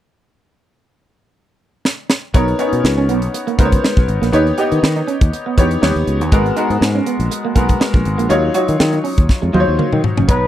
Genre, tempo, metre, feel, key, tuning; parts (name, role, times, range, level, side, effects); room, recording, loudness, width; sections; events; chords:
polished 1980s jazz-funk pop; 121 BPM; 4/4; swing 54% on 16ths; Eb minor; A4 = 440 Hz
crisp fusion drum kit; drums; 1.9-10.4 s; hi-hat, kick drum, snare drum, toms; -15 LUFS; equal
bright concert grand piano; accompaniment; 2.3-10.5 s; Gb3 to A#5; -18 LUFS; left 2 dB; lush chorus
electric guitar at the edge of break-up; riff; 2.3-10.4 s; Gb3 to G4; -21 LUFS; right 7 dB; lush chorus
sustaining fretless electric bass; bass; 2.3-10.5 s; Gb1 to Eb3; -18 LUFS; equal
warm flugelhorn; melody; 10.3-10.5 s; B4; -17 LUFS; left 1 dB
little or no reverb; dry, close 1970s-style studio recording; -13 LUFS; side -12 dB against mid
0.4-2.3 A section; 2.3-10.3 B section
drum fill 1.8-2.3, 9.3-10.3
0.4 N.C.; 2.3 Bmaj9; 4.3 Ebaug7; 5.8 Eb7b13; 6.3 Abm9; 8.3 Ebm9